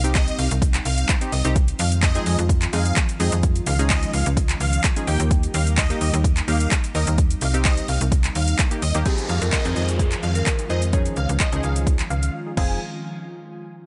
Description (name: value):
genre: dance-pop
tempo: 128 BPM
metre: 4/4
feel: straight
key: F minor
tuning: A4 = 439 Hz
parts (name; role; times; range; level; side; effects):
- supersaw chords; melody; 0.0-12.8 s; Eb5 to Ab5; -33 LUFS; equal; low-pass filter, tape echo
- funky polysynth comp; accompaniment; 0.0-12.8 s; F3 to Bb4; -31 LUFS; equal; chorus, sidechain pumping, low-pass filter
- airy breathy pad; sustained chords; 0.0-12.8 s; Eb3 to F4; -34 LUFS; equal; chorus, sidechain pumping, low-pass filter
- slap-like FM bass; bass; 0.0-12.8 s; F1 to F2; -24 LUFS; equal; sidechain pumping
- deep house drum kit; drums; 0.0-12.7 s; crash cymbal, handclaps, hi-hat, kick drum, shaker; -24 LUFS; equal; overdrive
- marimba with medium hard mallets; melody; 9.1-12.8 s; G4 to F5; -34 LUFS; equal; low-pass filter, tape echo
- downlifter; sound effects; 9.1-12.8 s; none; -36 LUFS; equal; none
room: little or no reverb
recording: nothing above 11.0 kHz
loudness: -21 LUFS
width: mono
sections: 0.0-9.1 A section; 9.1-12.8 B section; 12.8-13.9 C section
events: drop 0.0-9.1; filter sweep 9.1-12.8; break 12.3-12.8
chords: 0.0 Cm; 1.6 Fm7; 3.4 Dbadd9; 5.1 Eb; 7.2 Cm; 8.1 Eb; 9.1 Fm7; 10.9 Dbadd9; 12.6 Fm7; 12.8 N.C.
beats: 0.15 0.62 1.09 | 1.56 2.03 2.50 2.96 | 3.43 3.90 4.37 4.84 | 5.31 5.78 6.25 6.71 | 7.18 7.65 8.12 8.59 | 9.06 9.53 9.99 10.46 | 10.93 11.40 11.87 12.34